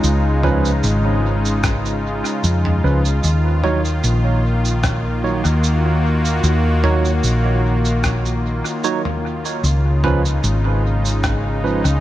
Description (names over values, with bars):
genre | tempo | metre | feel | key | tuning
ambient dub | 75 BPM | 4/4 | swing 54% on 16ths | Eb minor | A4 = 440 Hz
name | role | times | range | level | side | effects
warm analog pad | sustained chords | 0.0-12.0 s | Db3 to Gb4 | -21 LUFS | left 1 dB | chorus
hollow-body short-scale fingered electric bass | bass | 0.0-12.0 s | Ab1 to F2 | -17 LUFS | equal | none
lo-fi sampler-style drum kit | drums | 0.0-12.0 s | rim click, shaker, toms | -26 LUFS | right 1 dB | overdrive, dub echo
barky tine electric piano | stabs | 0.4-11.8 s | F3 to Db5 | -24 LUFS | right 5 dB | auto-pan, dub echo
electronic kick drum | drums | 1.6-11.4 s | none | -23 LUFS | equal | overdrive
room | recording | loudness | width
light reverb, digital ambience | none | -15 LUFS | side -14 dB against mid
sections
0.0-12.0 A section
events
none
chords
0.0 Db7; 3.2 Ebm7; 9.6 Db7